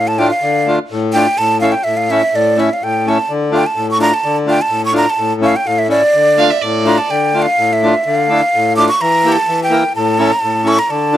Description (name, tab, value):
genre	klezmer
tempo	126 BPM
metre	2/4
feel	straight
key	D harmonic minor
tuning	A4 = 441 Hz
part	breathy mellow silver concert flute	melody	0.0-11.2 s	D5 to D6	-14 LUFS	right 1 dB	none
part	accordion	accompaniment	0.0-11.2 s	A2 to Bb4	-15 LUFS	left 2 dB	none
part	rich violin	second line	6.4-7.1 s	D5 to F5	-18 LUFS	right 6 dB	none
room	small room ambience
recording	dry, close 1970s-style studio recording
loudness	-11 LUFS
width	side -12 dB against mid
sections	0.0-7.1 A section; 7.1-11.2 B section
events	none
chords	0.0 Dm; 1.4 A; 3.3 Dm; 5.2 A; 6.1 Dm; 9.0 Edim; 10.0 A